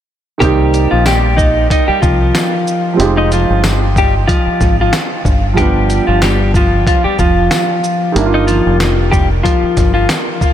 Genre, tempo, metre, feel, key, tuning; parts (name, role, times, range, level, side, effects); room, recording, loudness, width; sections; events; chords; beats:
hip hop, boom-bap hip-hop; 93 BPM; 4/4; swing 56% on 16ths; C minor; A4 = 440 Hz
clean electric guitar; melody; 0.4-10.1 s; F3 to Eb5; -15 LUFS; left 1 dB; wide subtle chorus, high-pass filter, low-pass filter, diffuse ambient delay
warm upright piano; accompaniment; 0.4-10.5 s; Eb3 to G4; -18 LUFS; right 4 dB; high-pass filter, low-pass filter
deep dub fingered electric bass; bass; 0.4-10.1 s; F1 to C2; -15 LUFS; equal
dusty soul sampler-style drum kit; drums; 0.4-10.5 s; hi-hat, kick drum, shaker, snare drum; -16 LUFS; equal
tambourine; percussion; 1.1-10.3 s; -32 LUFS; left 5 dB
light reverb; -10 LUFS; side -10 dB against mid
0.4-10.5 A section
0.4 Cm7; 3.0 Fm7; 5.2 G7; 8.2 Ebmaj7
| 0.41 1.06 1.70 2.35 | 2.99 3.64 4.28 4.93 | 5.57 6.22 6.86 7.51 | 8.15 8.80 9.44 10.09